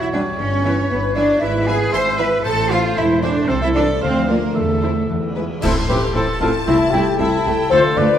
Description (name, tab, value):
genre	cinematic, playful, whimsical film cue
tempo	115 BPM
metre	2/4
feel	straight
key	A minor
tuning	A4 = 443 Hz
part	mellow hollow silver concert flute	second line	0.0-8.2 s	A4 to D6	-26 LUFS	left 1 dB	none
part	rich studio violin section	second line	0.0-8.0 s	C4 to C6	-26 LUFS	left 2 dB	none
part	warm cor anglais	second line	0.0-8.2 s	C4 to F5	-25 LUFS	right 2 dB	none
part	concert harp	arpeggios	0.0-8.2 s	E2 to C6	-25 LUFS	left 6 dB	none
part	rich studio cello section	bass	0.0-8.1 s	A2 to C5	-21 LUFS	right 2 dB	none
part	rich studio double bass section	bass	0.0-8.0 s	E1 to E2	-24 LUFS	right 3 dB	none
part	rich studio violin section	melody	0.1-8.2 s	B4 to C6	-31 LUFS	left 3 dB	none
part	warm studio viola section	accompaniment	0.1-8.1 s	E3 to C5	-26 LUFS	right 1 dB	none
part	warm French horn section	sustained chords	0.1-8.2 s	E3 to D5	-20 LUFS	left 4 dB	none
part	cymbal swell, clash cymbals and concert bass drum	percussion	3.5-6.6 s	none	-27 LUFS	equal	none
room	moderate scoring stage reverb, RT60 1.8 s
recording	none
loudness	-15 LUFS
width	side -9 dB against mid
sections	0.0-5.6 A section; 5.6-8.2 B section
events	band accent 5.6-6.1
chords	0.4 Em/G; 1.4 E/G#; 2.4 Am; 3.5 Am/C; 4.0 Bb/D; 4.6 Am/E; 5.1 E; 5.6 Am; 6.7 Am/C